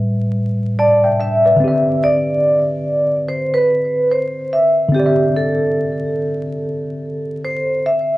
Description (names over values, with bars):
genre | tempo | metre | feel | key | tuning
hip hop | 72 BPM | 4/4 | swing 62% on 16ths | unclear | A4 = 440 Hz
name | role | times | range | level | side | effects
tine electric piano | accompaniment | 0.0-8.2 s | A2 to A5 | -19 LUFS | left 1 dB | medium stereo tremolo, cassette tape, low-pass filter
vibraphone with medium mallets | melody | 0.8-8.2 s | G4 to E5 | -16 LUFS | equal | low-pass filter, tape echo
room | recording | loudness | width
wet studio reverb, RT60 0.6 s | dark, warm production, vinyl crackle | -14 LUFS | side -17 dB against mid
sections
0.0-8.2 A section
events
none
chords
0.0 A9sus4; 1.6 D9sus4